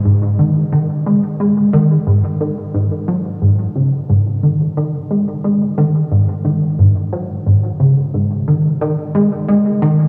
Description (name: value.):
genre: ambient.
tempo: 89 BPM.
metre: 4/4.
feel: straight.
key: unclear.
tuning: A4 = 437 Hz.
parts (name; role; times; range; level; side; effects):
plucky analog bass; solo; 0.0-10.1 s; G#2 to G#3; -15 LUFS; equal; ensemble chorus, cassette tape, analog delay.
room: wet huge ambient reverb, RT60 8.1 s.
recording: cassette tape, studio reverb.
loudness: -15 LUFS.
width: mono.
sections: 0.0-10.1 A section.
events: none.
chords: none.